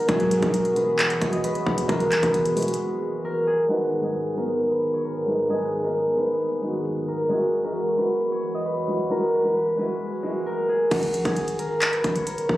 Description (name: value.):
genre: hip hop, trap.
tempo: 133 BPM.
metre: 4/4.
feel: half-time.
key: G# minor.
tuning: A4 = 440 Hz.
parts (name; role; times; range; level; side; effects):
concert harp; melody; 0.0-12.6 s; F#4 to D#5; -23 LUFS; equal; low-pass filter.
dark concert grand piano; accompaniment; 0.0-10.9 s; G#3 to B4; -28 LUFS; equal; low-pass filter.
hollow soft pad; sustained chords; 0.0-10.9 s; E2 to G#4; -32 LUFS; right 2 dB; chorus.
big bright polysynth; stabs; 0.1-0.5 s; B1 to F#3; -26 LUFS; left 1 dB; chorus, tape echo.
long sustained 808-style bass; bass; 0.1-2.8, 10.9-12.6 s; E1 to A#1; -32 LUFS; equal; none.
trap drum kit; drums; 0.1-12.6 s; crash cymbal, handclaps, hi-hat, kick drum; -25 LUFS; equal; none.
room: light reverb.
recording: recorded on a phone in the room, club reverb, low-pass filter.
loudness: -21 LUFS.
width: side -16 dB against mid.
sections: 0.0-3.7 A section; 3.7-10.9 B section; 10.9-12.6 C section.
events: break 2.8-3.7; filter sweep 3.7-10.9.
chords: 0.1 Eadd9; 3.7 G#m; 7.3 Eadd9; 10.9 G#m.